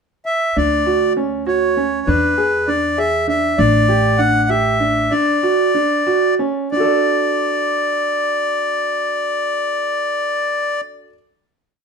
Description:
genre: contemporary instrumental, chamber music in an uneven meter.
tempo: 180-199 BPM (eighths).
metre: 5/8.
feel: straight.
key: D major.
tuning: A4 = 440 Hz.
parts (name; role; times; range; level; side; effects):
accordion; melody; 0.3-10.8 s; B4 to F#5; -17 LUFS; left 1 dB; none.
warm baby grand piano; arpeggios; 0.6-11.1 s; C#4 to D5; -19 LUFS; right 3 dB; none.
upright bass; bass; 0.6-5.1 s; A1 to E2; -21 LUFS; left 2 dB; none.
room: moderate studio reverb, RT60 0.8 s.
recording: minimal, uncompressed stereo recording.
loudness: -15 LUFS.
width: side -6 dB against mid.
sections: 0.0-0.6 pickup bar; 0.6-6.7 A section; 6.7-10.1 final chord.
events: slowing down 3.6-6.7.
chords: 0.0 N.C.; 0.6 Dmaj7; 2.1 E7; 3.6 A7sus4; 5.1 Dmaj7; 6.7 D.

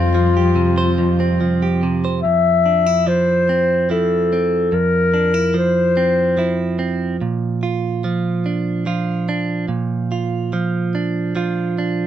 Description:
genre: acoustic folk-pop ballad.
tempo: 72 BPM.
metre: 3/4.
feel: straight.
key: unclear.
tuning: A4 = 440 Hz.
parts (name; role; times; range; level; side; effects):
picked swing-style acoustic guitar; melody; 0.0-1.4 s; F5; -30 LUFS; equal; none.
dark clarinet; second line; 0.0-6.8 s; F4 to E5; -17 LUFS; left 3 dB; none.
direct-recorded clean electric guitar; accompaniment; 0.0-12.1 s; F2 to C5; -18 LUFS; right 3 dB; none.
dark studio string section; sustained chords; 0.0-2.2 s; C3 to F4; -27 LUFS; left 4 dB; none.
woody fretless electric bass; bass; 0.0-1.4 s; F2; -19 LUFS; left 1 dB; none.
room: moderate studio reverb, RT60 0.5 s.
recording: none.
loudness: -16 LUFS.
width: side -10 dB against mid.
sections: 0.0-2.2 A section; 2.2-12.1 B section.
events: clarinet solo 2.2-12.1.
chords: 0.0 Fsus2; 2.2 Fmaj7(no3); 7.2 Bb.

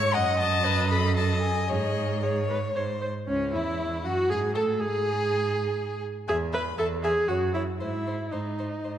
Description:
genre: quick classical-period movement for string quartet.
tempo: 112-122 BPM.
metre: 3/4.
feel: rubato.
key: C# minor.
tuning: A4 = 440 Hz.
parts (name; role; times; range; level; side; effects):
rich violin; melody; 0.0-9.0 s; C#5 to C#6; -32 LUFS; left 7 dB; none.
clear violin; second line; 0.0-8.9 s; C#4 to E5; -33 LUFS; left 3 dB; none.
rich viola; accompaniment; 0.0-9.0 s; C#4 to D#5; -28 LUFS; right 1 dB; none.
rich cello; bass; 0.0-9.0 s; C#2 to A2; -29 LUFS; right 3 dB; none.
room: wet concert hall reverb, RT60 1.9 s.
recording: dark, warm production.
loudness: -24 LUFS.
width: side -10 dB against mid.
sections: 0.0-3.3 A section; 3.3-9.0 B section.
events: none.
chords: 0.1 D#dim/F#; 1.7 C#5/G#; 2.8 G#; 3.3 C#m; 4.3 N.C.; 6.3 E; 7.3 F#5; 7.8 G#.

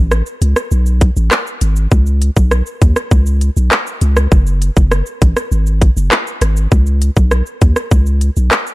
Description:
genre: dancehall.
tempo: 100 BPM.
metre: 4/4.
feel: straight.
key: unclear.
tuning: A4 = 440 Hz.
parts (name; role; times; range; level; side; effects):
punchy sub bass; bass; 0.0-8.5 s; F#1 to D#2; -12 LUFS; equal; none.
island pop drum kit; drums; 0.1-8.7 s; handclaps, hi-hat, kick drum, rim click, shaker; -13 LUFS; equal; overdrive.
room: digital ambience.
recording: dark, warm production.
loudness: -11 LUFS.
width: side -19 dB against mid.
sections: 0.0-8.7 A section.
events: none.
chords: none.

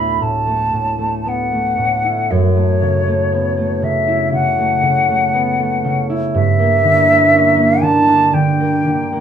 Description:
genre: classical, impressionist duo for flute and harp.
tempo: 56-61 BPM.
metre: 4/4.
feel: rubato.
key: unclear.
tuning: A4 = 440 Hz.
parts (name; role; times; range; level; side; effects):
concert flute; melody; 0.0-9.2 s; C#5 to B5; -15 LUFS; left 1 dB; none.
concert harp; accompaniment; 0.0-9.2 s; D2 to E4; -16 LUFS; right 2 dB; none.
room: light reverb.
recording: small room ambience.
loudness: -13 LUFS.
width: side -8 dB against mid.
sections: 0.0-9.2 A section.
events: none.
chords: 0.0 Dadd9; 2.3 F#m7; 6.3 Gm6.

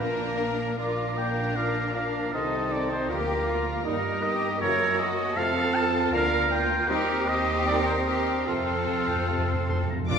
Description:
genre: classical, dramatic, fast romantic movement for symphony orchestra.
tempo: 156 BPM.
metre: 4/4.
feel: rubato.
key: unclear.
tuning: A4 = 440 Hz.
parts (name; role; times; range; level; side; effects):
rich symphonic violin section; melody; 0.0-10.2 s; F4 to D6; -35 LUFS; left 5 dB; none.
clear oboe; second line; 0.0-10.2 s; Bb4 to C6; -37 LUFS; equal; none.
mellow clarinet; second line; 0.0-10.2 s; Bb3 to G4; -37 LUFS; right 1 dB; none.
mellow hollow silver concert flute; second line; 0.0-10.2 s; Bb4 to F6; -36 LUFS; left 2 dB; none.
rich symphonic violin section; second line; 0.0-10.2 s; Bb3 to D5; -40 LUFS; left 3 dB; none.
dark bassoon; accompaniment; 0.0-10.2 s; Bb3 to Eb4; -34 LUFS; equal; none.
rich symphonic viola section; accompaniment; 0.0-10.2 s; Bb3 to F4; -35 LUFS; right 2 dB; none.
dark trombone section; sustained chords; 0.0-10.2 s; Bb2 to G3; -38 LUFS; right 2 dB; none.
mellow French horn section; sustained chords; 0.0-10.2 s; A3 to Bb4; -37 LUFS; left 5 dB; none.
warm trumpet; stabs; 0.0-10.2 s; D4 to A5; -29 LUFS; right 1 dB; none.
bright symphonic double bass section; bass; 0.0-10.2 s; Bb1 to G2; -34 LUFS; right 2 dB; none.
rich symphonic cello section; bass; 0.0-10.2 s; Bb2 to Bb4; -32 LUFS; right 2 dB; none.
timpani; percussion; 0.0-0.6, 8.5-10.1 s; F2 to Bb2; -31 LUFS; equal; none.
room: wet concert hall reverb, RT60 2.0 s.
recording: minimal, uncompressed stereo recording.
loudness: -23 LUFS.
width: side -7 dB against mid.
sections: 0.0-10.1 A section.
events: timpani fill 8.5-10.1.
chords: 0.0 Bb; 2.3 Adim/C; 3.1 Bb/D; 3.9 Eb/G; 4.6 Gb7; 5.4 F; 6.1 Bb/D; 6.9 Cm7/Eb; 8.5 F.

